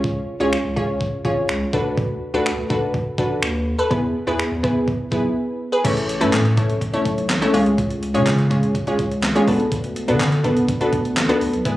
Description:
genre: dance-pop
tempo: 124 BPM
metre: 4/4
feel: straight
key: unclear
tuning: A4 = 440 Hz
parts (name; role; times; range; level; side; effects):
- glassy wavetable pluck; accompaniment; 0.0-11.8 s; G#3 to C#5; -20 LUFS; equal; chorus, sidechain pumping
- round analog bass; bass; 0.0-11.8 s; G#1 to D3; -24 LUFS; equal; sidechain pumping
- gated 80s digital drum machine; drums; 0.0-11.8 s; crash cymbal, finger snaps, handclaps, hi-hat, kick drum, snare drum; -24 LUFS; equal; gated reverb, gated reverb snare, overdrive
room: light reverb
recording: recorded on a phone in the room, club reverb, compression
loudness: -18 LUFS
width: side -15 dB against mid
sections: 0.0-5.8 A section; 5.8-11.8 B section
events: drop 5.8-11.8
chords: 0.0 C#; 1.7 D6; 3.9 E; 5.8 A; 7.5 C#; 9.5 D6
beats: | 0.04 0.52 1.01 1.49 | 1.98 2.46 2.94 3.43 | 3.91 4.39 4.88 5.36 | 5.85 6.33 6.82 7.30 | 7.78 8.27 8.75 9.23 | 9.72 10.20 10.69 11.17 | 11.65

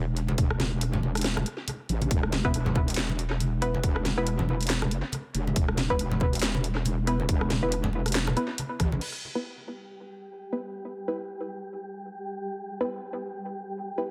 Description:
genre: deep dubstep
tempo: 139 BPM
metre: 4/4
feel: swing 57% on 16ths, half-time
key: E minor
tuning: A4 = 440 Hz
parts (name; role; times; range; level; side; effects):
- wobble bass; bass; 0.0-9.0 s; E1 to A1; -30 LUFS; equal; chorus
- garage drum kit; drums; 0.2-9.1 s; crash cymbal, handclaps, hi-hat, rim click, snare drum; -34 LUFS; equal; studio reverb, tape echo
- congas; percussion; 0.3-9.0 s; none; -36 LUFS; equal; tape echo
- electronic kick drum; drums; 0.4-8.9 s; none; -29 LUFS; equal; studio reverb
- filtered dub chord stab; stabs; 2.4-14.0 s; B3 to B4; -34 LUFS; equal; chorus, tape echo
- wind-like tuned noise texture; texture; 9.6-14.1 s; G3 to G4; -40 LUFS; equal; built-in reverb
room: light reverb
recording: echo-heavy mix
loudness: -28 LUFS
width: mono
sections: 0.0-9.0 A section; 9.0-14.1 B section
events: none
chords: 0.0 E5; 9.0 N.C.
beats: | 0.38 0.81 1.25 1.68 | 2.11 2.54 2.97 3.40 | 3.83 4.27 4.70 5.13 | 5.56 5.99 6.42 6.86 | 7.29 7.72 8.15 8.58 | 9.02 9.45 9.88 10.31 | 10.74 11.17 11.61 12.04 | 12.47 12.90 13.33 13.76

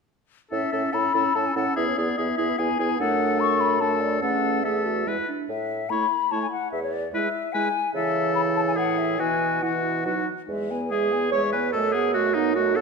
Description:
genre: quick classical-period movement for wind quintet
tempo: 145 BPM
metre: 3/4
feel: straight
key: A major, E major from 7.9 s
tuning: A4 = 439 Hz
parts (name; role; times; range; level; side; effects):
- mellow concert flute; melody; 0.5-12.8 s; C#5 to C#6; -27 LUFS; left 9 dB; none
- clear oboe; second line; 0.5-12.8 s; D#4 to C#5; -28 LUFS; left 3 dB; none
- dark clarinet; accompaniment; 0.5-12.8 s; C#4 to C#5; -28 LUFS; right 8 dB; none
- warm French horn; accompaniment; 0.5-12.8 s; E3 to C#4; -31 LUFS; equal; none
- mellow bassoon; bass; 0.5-12.8 s; E2 to C#3; -29 LUFS; right 3 dB; none
room: wet scoring stage reverb, RT60 1.6 s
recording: none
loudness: -22 LUFS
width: side -4 dB against mid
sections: 0.5-10.5 A section; 10.5-12.8 B section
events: none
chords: 0.5 A; 1.8 E; 3.0 D/F#; 4.2 A/E; 5.1 E; 5.5 A; 6.7 E; 7.9 A/C#; 9.2 Bsus4; 10.1 B; 10.5 E; 11.7 B7/F#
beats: | 0.52 0.94 1.35 | 1.77 2.18 2.59 | 3.00 3.40 3.81 | 4.23 4.65 5.07 | 5.49 5.91 6.32 | 6.73 7.14 7.54 | 7.95 8.36 8.77 | 9.20 9.63 10.06 | 10.49 10.91 11.33 | 11.74 12.15 12.56

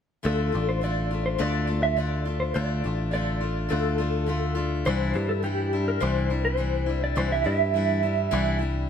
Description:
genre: rock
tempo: 104 BPM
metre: 4/4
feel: straight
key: D minor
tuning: A4 = 440 Hz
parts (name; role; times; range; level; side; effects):
- picked steel-string acoustic guitar; accompaniment; 0.2-8.9 s; C3 to F4; -29 LUFS; left 4 dB; none
- mellow electric guitar; melody; 0.3-8.6 s; G4 to E5; -28 LUFS; right 1 dB; tremolo
- picked electric bass; bass; 0.3-8.9 s; A1 to G2; -27 LUFS; equal; none
room: light reverb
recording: none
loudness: -23 LUFS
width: side -8 dB against mid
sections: 0.2-8.9 A section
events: none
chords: 0.2 Dm; 4.9 Cadd9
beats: | 0.24 0.81 1.39 1.97 | 2.55 3.13 3.71 4.29 | 4.86 5.44 6.02 6.59 | 7.17 7.75 8.32

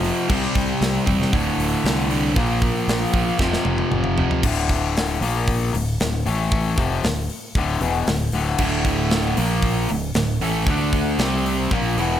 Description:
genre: hard rock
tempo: 116 BPM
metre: 4/4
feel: straight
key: D minor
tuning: A4 = 441 Hz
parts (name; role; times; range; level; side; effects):
- cranked stack guitar; riff; 0.0-12.2 s; D2 to D4; -23 LUFS; left 5 dB; overdrive
- overdriven electric guitar; riff; 0.0-4.4, 8.6-12.2 s; D2 to D4; -24 LUFS; right 10 dB; none
- growling fingered electric bass; bass; 0.0-12.2 s; D1 to D2; -25 LUFS; equal; overdrive
- tight metal drum kit; drums; 0.0-12.1 s; crash cymbal, hi-hat, kick drum, snare drum, toms; -24 LUFS; equal; none
room: light reverb, small room ambience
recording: none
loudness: -18 LUFS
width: side -10 dB against mid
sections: 0.0-4.4 A section; 4.4-12.2 B section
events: drum fill 3.4-4.4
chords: 0.3 C; 1.3 D5; 2.4 Bb5; 3.4 F5; 4.4 D5; 5.2 Bb5; 5.7 D5; 6.3 A5; 6.8 Dm; 9.4 Bb5; 9.9 D5; 11.2 C5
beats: | 0.29 0.81 1.33 1.85 | 2.37 2.88 3.40 3.92 | 4.44 4.96 5.48 6.00 | 6.52 7.04 7.55 8.07 | 8.60 9.12 9.64 10.16 | 10.68 11.20 11.72

